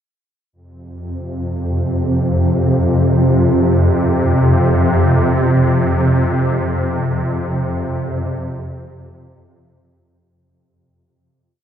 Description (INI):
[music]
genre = ambient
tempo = free time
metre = none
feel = none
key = unclear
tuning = A4 = 440 Hz
[part]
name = swarming drone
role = solo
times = 1.1-10.5 s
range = F2 to C3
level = -14 LUFS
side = equal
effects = built-in reverb, diffuse ambient delay
[sound]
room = wet cathedral reverb, RT60 5.7 s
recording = worn, warbling old tape, cassette tape, warbly pitch drift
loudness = -13 LUFS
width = side -9 dB against mid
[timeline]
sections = 0.5-10.3 A section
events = fade-out 5.4-10.3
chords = 0.5 F5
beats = free time